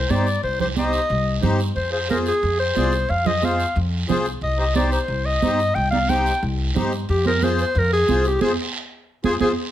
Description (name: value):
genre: latin, cumbia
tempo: 180 BPM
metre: 4/4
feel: straight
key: F dorian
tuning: A4 = 440 Hz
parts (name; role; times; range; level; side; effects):
- clear clarinet; melody; 0.0-9.5 s; G4 to G5; -22 LUFS; left 1 dB; none
- upright bass; bass; 0.0-9.5 s; C2 to G2; -23 LUFS; left 1 dB; none
- accordion; accompaniment; 0.1-9.5 s; Eb4 to D5; -26 LUFS; left 2 dB; light tremolo tuning
- congas; percussion; 0.1-9.5 s; none; -25 LUFS; right 7 dB; none
- guiro; percussion; 0.1-9.5 s; none; -33 LUFS; right 5 dB; none
room: light reverb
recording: none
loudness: -18 LUFS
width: side -12 dB against mid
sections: 0.0-9.7 A section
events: band accent 8.4-9.7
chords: 0.0 Cm; 1.8 Fm; 4.4 Cm; 7.1 Fm